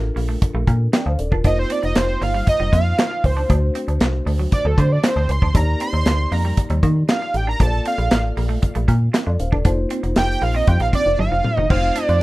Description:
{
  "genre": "early-eighties boogie funk",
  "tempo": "117 BPM",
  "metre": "4/4",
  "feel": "straight",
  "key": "Bb major",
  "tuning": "A4 = 439 Hz",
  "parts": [
    { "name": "mellow tine electric piano", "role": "accompaniment", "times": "0.0-12.2 s", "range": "A3 to G5", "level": "-28 LUFS", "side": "left 2 dB", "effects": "none" },
    { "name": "metallic FM bass", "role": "bass", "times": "0.0-12.2 s", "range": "Eb1 to Eb3", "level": "-19 LUFS", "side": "equal", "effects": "none" },
    { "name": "electric guitar at the edge of break-up", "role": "riff", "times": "0.2-12.1 s", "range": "F#3 to Eb4", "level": "-31 LUFS", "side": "right 5 dB", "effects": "lush chorus" },
    { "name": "modern studio drum kit", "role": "drums", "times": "0.2-12.2 s", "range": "crash cymbal, handclaps, hi-hat, kick drum, snare drum, toms", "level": "-20 LUFS", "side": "equal", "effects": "none" },
    { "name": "fat analog lead", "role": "melody", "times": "1.5-12.2 s", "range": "A4 to C6", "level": "-22 LUFS", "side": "right 2 dB", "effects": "none" }
  ],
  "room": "little or no reverb",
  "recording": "rough home demo mix",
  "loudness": "-16 LUFS",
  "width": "side -19 dB against mid",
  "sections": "0.0-11.7 A section",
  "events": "analog synth lead solo 0.0-11.7; drum fill 11.2-11.7",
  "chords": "0.0 Bbmaj7; 1.4 F7sus4; 3.5 D7; 5.5 Ebmaj7; 7.6 Bbmaj7; 9.7 F7sus4; 11.7 F7",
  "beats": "0.42 0.93 | 1.45 1.96 2.47 2.98 | 3.50 4.01 4.52 5.04 | 5.55 6.06 6.58 7.09 | 7.60 8.11 8.63 9.14 | 9.65 10.16 10.68 11.19 | 11.70 12.22"
}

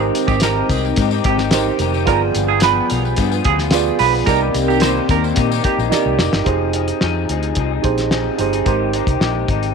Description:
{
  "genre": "indie pop, bedroom pop",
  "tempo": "109 BPM",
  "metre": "4/4",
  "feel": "straight",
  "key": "F dorian",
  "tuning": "A4 = 439 Hz",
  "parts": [
    { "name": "electric guitar through a small old amp", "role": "accompaniment", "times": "0.0-9.7 s", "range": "C3 to Ab4", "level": "-22 LUFS", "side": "left 18 dB", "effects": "lush chorus, warbly pitch drift" },
    { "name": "tine electric piano", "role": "accompaniment", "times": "0.0-9.7 s", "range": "Eb4 to D5", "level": "-21 LUFS", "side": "right 16 dB", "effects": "cassette tape" },
    { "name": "phased analog pad", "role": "sustained chords", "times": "0.0-6.4 s", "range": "Eb3 to G5", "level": "-24 LUFS", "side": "left 3 dB", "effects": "phaser, chorus" },
    { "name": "vintage muted fingered electric bass", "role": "bass", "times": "0.0-9.7 s", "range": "F1 to Bb2", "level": "-21 LUFS", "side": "left 2 dB", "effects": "none" },
    { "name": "cloth-damped thuddy drum kit", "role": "drums", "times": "0.1-9.7 s", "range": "hi-hat, kick drum, snare drum", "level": "-20 LUFS", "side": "left 2 dB", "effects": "none" },
    { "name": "tambourine", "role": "percussion", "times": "0.1-6.3 s", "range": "none", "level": "-31 LUFS", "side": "left 17 dB", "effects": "none" },
    { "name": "semi-hollow electric guitar", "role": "second line", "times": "0.3-5.8 s", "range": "G4 to C5", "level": "-21 LUFS", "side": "right 13 dB", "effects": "analog chorus, tape echo" }
  ],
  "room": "small room ambience",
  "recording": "1960s-style stereo with parts hard left and right",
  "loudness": "-14 LUFS",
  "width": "side -5 dB against mid",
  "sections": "0.0-6.5 A section; 6.5-9.7 B section",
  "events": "drum fill 5.9-6.5",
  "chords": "0.0 Abmaj7; 2.1 G7b9; 4.3 Cm7; 6.5 Fm7; 8.7 Abmaj7",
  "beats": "0.43 0.98 1.53 | 2.08 2.62 3.17 3.72 | 4.27 4.82 5.37 5.92 | 6.47 7.02 7.57 8.12 | 8.67 9.22"
}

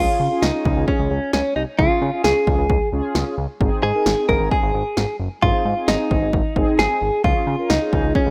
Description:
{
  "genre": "synth-pop",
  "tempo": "132 BPM",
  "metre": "4/4",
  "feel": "straight",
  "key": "unclear",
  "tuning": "A4 = 441 Hz",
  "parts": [
    { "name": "direct-recorded clean electric guitar", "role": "melody", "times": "0.0-8.3 s", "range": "Db4 to Bb4", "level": "-22 LUFS", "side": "equal", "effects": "phaser" },
    { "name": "mellow synth brass", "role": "accompaniment", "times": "0.0-8.3 s", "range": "C4 to Bb4", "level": "-28 LUFS", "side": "equal", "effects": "chorus" },
    { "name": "fat analog bass", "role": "bass", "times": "0.0-8.3 s", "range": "Gb1 to Db3", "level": "-26 LUFS", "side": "equal", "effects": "none" },
    { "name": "punchy analog drum machine", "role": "drums", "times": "0.4-8.3 s", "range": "kick drum, snare drum", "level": "-24 LUFS", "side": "equal", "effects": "none" }
  ],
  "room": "light reverb",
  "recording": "rough home demo mix",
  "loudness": "-19 LUFS",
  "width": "mono",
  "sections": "0.0-8.3 A section",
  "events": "none",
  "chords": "0.0 Db; 3.6 Ab; 7.2 Db",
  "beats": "0.42 0.88 1.33 | 1.79 2.24 2.70 3.15 | 3.61 4.06 4.51 4.97 | 5.42 5.88 6.33 6.79 | 7.24 7.70 8.15"
}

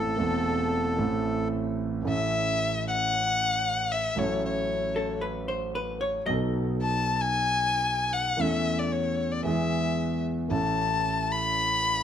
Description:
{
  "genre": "tango",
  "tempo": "113 BPM",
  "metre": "4/4",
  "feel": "rubato",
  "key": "A major",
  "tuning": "A4 = 440 Hz",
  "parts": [
    { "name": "bandoneon", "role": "melody", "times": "0.0-1.5 s", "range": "A4", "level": "-30 LUFS", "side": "right 1 dB", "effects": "none" },
    { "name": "warm violin", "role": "second line", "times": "0.0-12.0 s", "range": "A4 to B5", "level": "-27 LUFS", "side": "left 3 dB", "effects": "none" },
    { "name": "warm concert grand piano", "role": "accompaniment", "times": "0.0-12.0 s", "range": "E1 to A4", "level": "-28 LUFS", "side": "right 2 dB", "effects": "none" },
    { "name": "vintage hollow-body jazz guitar", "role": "second line", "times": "5.0-6.6 s", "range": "A4 to D#5", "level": "-30 LUFS", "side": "left 2 dB", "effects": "none" }
  ],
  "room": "moderate recital hall reverb, RT60 1.4 s",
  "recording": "close, detailed microphones",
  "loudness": "-25 LUFS",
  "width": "side -9 dB against mid",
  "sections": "0.0-2.1 A section; 2.1-12.0 B section",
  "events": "violin solo 2.1-12.0",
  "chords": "0.0 Am; 2.1 A; 4.2 F#m/A; 6.3 B7; 8.4 A/E; 9.5 E; 10.5 A",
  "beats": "0.47 0.99 1.53 | 2.06 2.59 3.12 3.65 | 4.18 4.70 5.23 5.75 | 6.28 6.80 7.33 7.86 | 8.39 8.92 9.45 9.98 | 10.52 11.05 11.58"
}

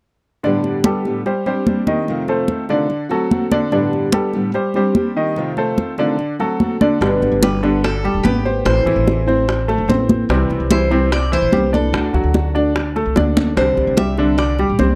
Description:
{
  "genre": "latin, Cuban son and guajira",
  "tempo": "146 BPM",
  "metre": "4/4",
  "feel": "straight",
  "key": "G major",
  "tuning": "A4 = 442 Hz",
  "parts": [
    { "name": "fingerpicked steel-string acoustic guitar", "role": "accompaniment", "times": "0.4-15.0 s", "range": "F2 to G4", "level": "-24 LUFS", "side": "equal", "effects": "none" },
    { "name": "bright grand piano", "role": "arpeggios", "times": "0.4-15.0 s", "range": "C3 to Eb5", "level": "-22 LUFS", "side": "equal", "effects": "none" },
    { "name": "congas", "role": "percussion", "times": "0.4-15.0 s", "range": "none", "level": "-21 LUFS", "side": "equal", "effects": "none" },
    { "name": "upright bass", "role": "bass", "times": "7.0-15.0 s", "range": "E1 to D2", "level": "-22 LUFS", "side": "equal", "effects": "none" },
    { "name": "bongos", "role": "percussion", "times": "7.0-15.0 s", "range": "none", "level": "-26 LUFS", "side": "equal", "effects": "none" },
    { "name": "Cuban tres", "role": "melody", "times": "7.4-15.0 s", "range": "G4 to E5", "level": "-23 LUFS", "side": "equal", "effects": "none" }
  ],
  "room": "light reverb",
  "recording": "dry, close 1970s-style studio recording",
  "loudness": "-17 LUFS",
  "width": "mono",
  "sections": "0.4-7.0 A section; 7.0-15.0 B section",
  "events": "drum fill 13.2-13.6",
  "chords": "0.4 Gadd9; 1.3 Csus2; 2.1 F7; 2.9 D7; 3.7 Gadd9; 4.5 Csus2; 5.4 F7; 6.2 D7; 7.0 G; 8.7 Am; 10.3 C; 11.9 D; 13.6 Csus2",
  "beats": "| 0.44 0.85 1.26 1.67 | 2.08 2.49 2.90 3.31 | 3.73 4.14 4.55 4.96 | 5.37 5.78 6.19 6.61 | 7.02 7.43 7.84 8.25 | 8.66 9.07 9.48 9.89 | 10.30 10.71 11.12 11.53 | 11.94 12.35 12.76 13.17 | 13.58 13.98 14.39 14.80"
}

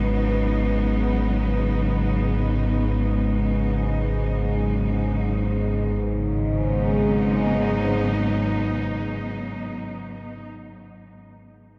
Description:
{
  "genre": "dark ambient drone",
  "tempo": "free time",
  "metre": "none",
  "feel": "none",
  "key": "G# minor",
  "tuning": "A4 = 439 Hz",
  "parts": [
    { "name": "rich symphonic cello section", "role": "sustained chords", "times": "0.0-10.5 s", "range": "G#2 to D#4", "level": "-29 LUFS", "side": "equal", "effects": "none" },
    { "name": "analog drone", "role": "drone", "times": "0.0-9.8 s", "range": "G#1 to G#2", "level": "-25 LUFS", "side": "equal", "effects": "chorus" },
    { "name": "bubbling stepped-filter texture", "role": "texture", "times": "0.0-6.0 s", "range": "B3 to B4", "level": "-36 LUFS", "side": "equal", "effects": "chorus, built-in reverb" }
  ],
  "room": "wet cathedral reverb, RT60 5.8 s",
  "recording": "cassette tape",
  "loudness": "-23 LUFS",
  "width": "mono",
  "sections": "0.0-6.0 A section; 6.0-10.3 B section",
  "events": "filter sweep on synth drone 0.0-6.0",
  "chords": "0.0 G#m",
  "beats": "free time"
}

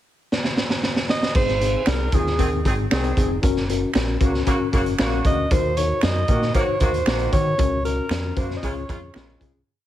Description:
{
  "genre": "uptempo 1960s-style soul",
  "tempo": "115 BPM",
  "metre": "4/4",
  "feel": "straight",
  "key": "Gb lydian",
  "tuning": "A4 = 435 Hz",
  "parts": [
    { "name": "raw garage drum kit", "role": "drums", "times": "0.3-9.5 s", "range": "crash cymbal, hi-hat, kick drum, snare drum", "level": "-22 LUFS", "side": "right 1 dB", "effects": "none" },
    { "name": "warm alto saxophone", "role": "melody", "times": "1.1-9.4 s", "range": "Ab4 to Eb5", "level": "-24 LUFS", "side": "right 1 dB", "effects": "none" },
    { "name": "mellow tine electric piano", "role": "accompaniment", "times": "1.3-9.6 s", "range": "C4 to C5", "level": "-26 LUFS", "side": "left 5 dB", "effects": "medium stereo tremolo" },
    { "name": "deep dub picked electric bass", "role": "bass", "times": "1.4-9.6 s", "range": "F1 to Eb3", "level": "-25 LUFS", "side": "equal", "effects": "none" },
    { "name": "finger snaps", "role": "percussion", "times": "1.9-9.3 s", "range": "none", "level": "-33 LUFS", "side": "right 6 dB", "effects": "none" },
    { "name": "mellow horn section", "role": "second line", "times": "2.1-9.5 s", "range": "Db3 to Ab4", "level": "-29 LUFS", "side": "right 1 dB", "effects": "none" }
  ],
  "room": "light reverb",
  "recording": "heavily compressed radio sound, multiband compression",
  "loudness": "-19 LUFS",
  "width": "side -12 dB against mid",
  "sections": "0.0-1.4 pickup bar; 1.4-9.7 pre-chorus",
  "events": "drum fill 0.3-1.4; fade-out 7.6-9.7",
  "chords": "0.0 N.C.; 1.4 Ab; 3.4 Gb; 5.5 Ebm; 7.6 Gb/Db; 8.6 Db",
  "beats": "0.32 0.83 | 1.35 1.87 2.39 2.91 | 3.43 3.95 4.47 4.99 | 5.51 6.03 6.55 7.07 | 7.59 8.11 8.63 9.15"
}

